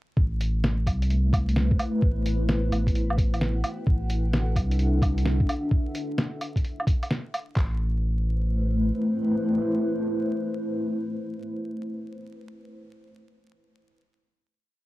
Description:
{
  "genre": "future garage",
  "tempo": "130 BPM",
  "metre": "4/4",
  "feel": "swing 66% on 16ths",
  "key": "A dorian",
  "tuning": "A4 = 440 Hz",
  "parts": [
    { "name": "granular cloud pad", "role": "sustained chords", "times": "1.1-11.2 s", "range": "A3 to F#5", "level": "-28 LUFS", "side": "left 1 dB", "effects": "built-in reverb, vintage 12-bit sampler grit, sidechain pumping, cassette tape, plate reverb" },
    { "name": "warm sub bass", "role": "bass", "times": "0.2-8.9 s", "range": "A1 to C2", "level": "-24 LUFS", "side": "equal", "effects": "sidechain pumping" },
    { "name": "lo-fi sampler-style drum kit", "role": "drums", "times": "0.2-7.7 s", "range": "handclaps, kick drum", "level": "-24 LUFS", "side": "equal", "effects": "cassette tape" },
    { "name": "lo-fi sampler-style drum kit", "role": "drums", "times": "0.4-7.5 s", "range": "hi-hat, snare drum, woodblock", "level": "-29 LUFS", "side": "equal", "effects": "cassette tape" }
  ],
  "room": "light reverb",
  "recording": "home recording on cassette, vinyl crackle",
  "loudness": "-23 LUFS",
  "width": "side -18 dB against mid",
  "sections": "0.2-7.6 groove; 7.6-11.3 final chord",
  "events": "none",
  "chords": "0.2 Amadd9; 2.0 Em/A; 3.9 D7/A; 5.7 N.C.; 7.6 Amadd9",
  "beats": "| 0.18 0.64 1.10 1.57 | 2.03 2.49 2.95 3.41 | 3.87 4.33 4.80 5.26 | 5.72 6.18 6.64 7.11 | 7.57 8.03 8.49 8.95 | 9.41 9.87 10.34 10.80"
}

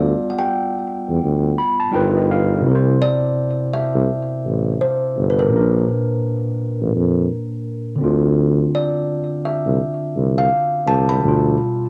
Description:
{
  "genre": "lo-fi hip hop",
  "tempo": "84 BPM",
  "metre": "4/4",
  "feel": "swing 60% on 16ths",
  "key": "C major",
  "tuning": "A4 = 440 Hz",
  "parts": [
    { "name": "kalimba", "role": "melody", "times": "0.0-11.8 s", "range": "Bb4 to B5", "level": "-25 LUFS", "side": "equal", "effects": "low-pass filter, cassette tape, tape echo" },
    { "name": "tine electric piano", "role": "accompaniment", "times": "0.0-11.9 s", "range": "Bb2 to B5", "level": "-23 LUFS", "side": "equal", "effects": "cassette tape, low-pass filter" },
    { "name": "breathy tuba", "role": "bass", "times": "0.0-11.6 s", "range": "G1 to F2", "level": "-20 LUFS", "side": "equal", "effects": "transformer saturation" }
  ],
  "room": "light reverb",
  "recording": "home recording on cassette",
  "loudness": "-19 LUFS",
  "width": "mono",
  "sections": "0.0-2.7 A section; 2.7-11.9 B section",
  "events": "none",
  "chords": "0.0 G7/D; 1.9 G7alt; 2.7 C; 5.5 Bb; 8.0 Dm9; 11.2 G7/D",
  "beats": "0.52 1.23 1.94 | 2.66 3.37 4.09 4.80 | 5.51 6.23 6.94 7.66 | 8.37 9.09 9.80 10.52 | 11.23"
}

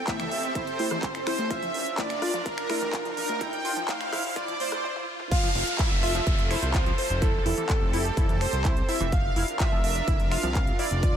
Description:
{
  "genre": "progressive house",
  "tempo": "126 BPM",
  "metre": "4/4",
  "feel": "straight",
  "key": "unclear",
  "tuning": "A4 = 442 Hz",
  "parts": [
    { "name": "soft supersaw", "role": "melody", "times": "0.0-11.1 s", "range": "A4 to G5", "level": "-30 LUFS", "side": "right 2 dB", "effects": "sidechain pumping, ping-pong delay" },
    { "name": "supersaw pad", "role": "sustained chords", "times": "0.0-11.2 s", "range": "C4 to C5", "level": "-37 LUFS", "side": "right 2 dB", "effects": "sidechain pumping" },
    { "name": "riser and downlifter", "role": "sound effects", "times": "0.0-9.1 s", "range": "none", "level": "-35 LUFS", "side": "equal", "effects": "none" },
    { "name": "tight sequenced synth", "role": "arpeggios", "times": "0.1-11.1 s", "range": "E3 to F4", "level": "-34 LUFS", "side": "left 1 dB", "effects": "chorus, sidechain pumping, ping-pong delay" },
    { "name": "big-room dance drum kit", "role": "drums", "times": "0.1-11.1 s", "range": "crash cymbal, finger snaps, handclaps, hi-hat, toms", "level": "-34 LUFS", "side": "right 1 dB", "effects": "sidechain pumping on hats, high-pass filter on hats, high-pass filter on snare, sidechain pumping on toms, high-pass filter on toms, sidechain pumping on cymbals, high-pass filter on cymbals" },
    { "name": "electronic kick drum", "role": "drums", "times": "0.1-11.1 s", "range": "none", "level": "-26 LUFS", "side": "equal", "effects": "none" },
    { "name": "electronic congas and rim click", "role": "percussion", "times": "0.1-4.8 s", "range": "none", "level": "-38 LUFS", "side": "left 4 dB", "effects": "sidechain pumping on perc, sidechain pumping on snare" },
    { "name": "fat analog bass", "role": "bass", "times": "0.2-11.2 s", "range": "F1 to C2", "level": "-31 LUFS", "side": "equal", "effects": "sidechain pumping, high-pass filter" },
    { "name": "soft synth bell", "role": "second line", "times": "5.3-11.1 s", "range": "A4 to F5", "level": "-37 LUFS", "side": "equal", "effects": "none" }
  ],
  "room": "light reverb",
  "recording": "high-pass filter",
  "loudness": "-24 LUFS",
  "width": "side -9 dB against mid",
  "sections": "0.0-5.3 A section; 5.3-11.2 B section",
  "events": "build-up 0.0-5.3; riser 0.0-5.3; filter sweep on synth arpeggio sound 0.0-5.3; drum fill 4.8-5.3; stop 4.8-5.3; drop 5.3-11.2",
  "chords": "0.0 Am7/F; 1.5 Bb/F; 3.4 Dm7/F; 5.3 Fmaj7; 7.2 Am7/F; 9.1 Bb/F",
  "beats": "0.08 0.55 1.03 | 1.51 1.98 2.46 2.94 | 3.41 3.89 4.36 4.84 | 5.32 5.79 6.27 6.74 | 7.22 7.70 8.17 8.65 | 9.12 9.60 10.08 10.55 | 11.03"
}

